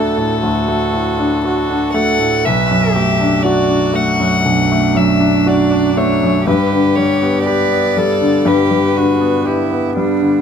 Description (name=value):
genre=classical, slow romantic movement for piano quartet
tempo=60 BPM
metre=4/4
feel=rubato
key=unclear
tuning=A4 = 439 Hz
part: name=rich violin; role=melody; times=0.0-9.5 s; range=A4 to F#5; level=-19 LUFS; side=left 6 dB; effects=none
part: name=warm cello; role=second line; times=0.0-10.4 s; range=D4 to B4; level=-19 LUFS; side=right 9 dB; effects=none
part: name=bright concert grand piano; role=accompaniment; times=0.0-10.4 s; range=B1 to G4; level=-14 LUFS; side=left 1 dB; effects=none
room=moderate studio ambience, RT60 0.5 s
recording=none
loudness=-12 LUFS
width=side -7 dB against mid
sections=0.0-10.4 A section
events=none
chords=0.0 D; 2.4 Bm7; 6.5 G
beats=0.43 1.45 | 2.45 3.45 4.46 5.47 | 6.47 7.47 8.47 9.47